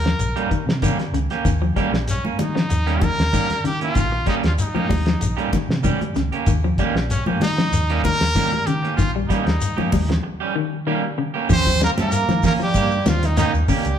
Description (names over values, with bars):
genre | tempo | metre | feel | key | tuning
afrobeat | 96 BPM | 4/4 | swing 53% on 16ths | Eb mixolydian | A4 = 439 Hz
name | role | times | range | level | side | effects
brilliant trumpet | melody | 0.0-14.0 s | Db4 to C5 | -24 LUFS | equal | none
electric guitar at the edge of break-up | stabs | 0.0-13.9 s | G3 to G4 | -26 LUFS | right 6 dB | none
fingered electric bass | bass | 0.0-14.0 s | Bb1 to Eb3 | -24 LUFS | equal | none
semi-hollow electric guitar | arpeggios | 0.1-13.9 s | Db3 to G3 | -26 LUFS | left 6 dB | none
cloth-damped thuddy drum kit | drums | 0.1-14.0 s | hi-hat, kick drum, snare drum | -24 LUFS | equal | none
shekere | percussion | 0.2-14.0 s | none | -28 LUFS | left 3 dB | none
congas | percussion | 1.5-13.5 s | none | -27 LUFS | right 2 dB | none
clear trombone | second line | 11.5-14.0 s | Eb3 to C4 | -26 LUFS | right 6 dB | none
room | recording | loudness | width
wet large studio reverb, RT60 1.5 s | band playing live in one room | -18 LUFS | side -9 dB against mid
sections
0.0-11.5 A section; 11.5-14.0 B section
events
break 10.2-11.5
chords
0.0 Eb7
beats
0.20 0.83 | 1.45 2.08 2.71 3.33 | 3.96 4.59 5.22 5.84 | 6.47 7.10 7.73 8.36 | 8.98 9.61 10.24 10.87 | 11.49 12.12 12.75 13.38